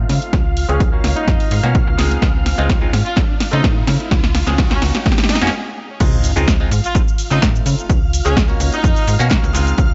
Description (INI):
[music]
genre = filtered disco house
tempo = 127 BPM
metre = 4/4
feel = straight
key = unclear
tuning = A4 = 441 Hz
[part]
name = overdriven clav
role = accompaniment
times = 0.0-9.9 s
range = Ab3 to Ab4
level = -26 LUFS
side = equal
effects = phaser, vintage 12-bit sampler grit, sidechain pumping, low-pass filter
[part]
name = string machine, full ensemble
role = sustained chords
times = 0.0-9.9 s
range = F5 to F6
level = -31 LUFS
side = equal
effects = ensemble chorus, sidechain pumping, low-pass filter
[part]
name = slap-like FM bass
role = bass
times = 0.0-9.9 s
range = Db2 to Db3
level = -20 LUFS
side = equal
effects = sidechain pumping, low-pass filter
[part]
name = riser and sub drop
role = sound effects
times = 1.2-7.9 s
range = none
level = -31 LUFS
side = equal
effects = none
[part]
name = house drum kit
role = drums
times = 0.1-9.9 s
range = crash cymbal, hi-hat, shaker, snare drum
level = -24 LUFS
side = equal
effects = studio reverb, sidechain pumping on hats, sidechain pumping on cymbals, sidechain pumping on perc
[part]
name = electronic kick drum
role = drums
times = 0.3-9.9 s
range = none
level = -19 LUFS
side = equal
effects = studio reverb
[part]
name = clear horn section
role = melody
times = 0.7-9.2 s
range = Db4 to F4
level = -28 LUFS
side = equal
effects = sidechain pumping, low-pass filter, dub echo
[sound]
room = light reverb, digital ambience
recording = nothing above 7.8 kHz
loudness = -16 LUFS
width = mono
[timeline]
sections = 0.0-6.0 A section; 6.0-9.9 B section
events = build-up 0.0-6.0; drum fill 0.0-5.5; filter sweep 0.0-6.0; stop 5.5-6.0; drop 6.0-9.9; impact 6.0-7.9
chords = 0.3 Bbm7/Db; 1.0 Cbmaj7/Db; 2.2 Dbmaj7; 3.2 F7; 4.1 Bbm7/Db; 4.8 Ebm9/Db; 6.0 Dbmaj7; 6.9 F7; 7.9 Bbm7/Db; 8.6 Cbmaj7/Db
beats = | 0.33 0.81 1.28 1.75 | 2.22 2.70 3.17 3.64 | 4.11 4.58 5.06 5.53 | 6.00 6.47 6.95 7.42 | 7.89 8.37 8.84 9.31 | 9.78